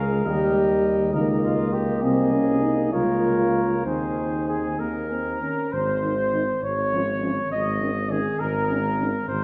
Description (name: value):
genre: classical, brass quintet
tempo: 67 BPM (dotted quarters)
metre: 6/8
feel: straight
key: unclear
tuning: A4 = 439 Hz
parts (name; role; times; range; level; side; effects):
- mellow trumpet; melody; 0.0-9.4 s; Ab4 to F5; -31 LUFS; equal; none
- clear flugelhorn; second line; 0.0-9.4 s; F4 to Eb5; -32 LUFS; equal; none
- warm trombone; accompaniment; 0.0-9.1 s; Eb3 to Db4; -32 LUFS; equal; none
- warm tuba; bass; 0.0-9.4 s; Ab1 to Eb2; -29 LUFS; equal; none
- mellow French horn; accompaniment; 0.3-9.1 s; C4 to G4; -28 LUFS; equal; none
room: wet concert hall reverb, RT60 1.9 s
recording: none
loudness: -23 LUFS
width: mono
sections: 0.0-5.7 A section; 5.7-9.4 B section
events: none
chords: 0.3 Eb; 1.1 Eb7/Db; 2.0 Ab/C; 2.9 Bbm/Db; 3.9 Ab/Eb; 4.8 Eb5; 5.7 Ab; 6.6 Db/Ab; 7.5 Eb5/Ab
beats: | 0.26 1.14 | 2.03 2.93 | 3.86 4.79 | 5.73 6.63 | 7.52 8.40 | 9.29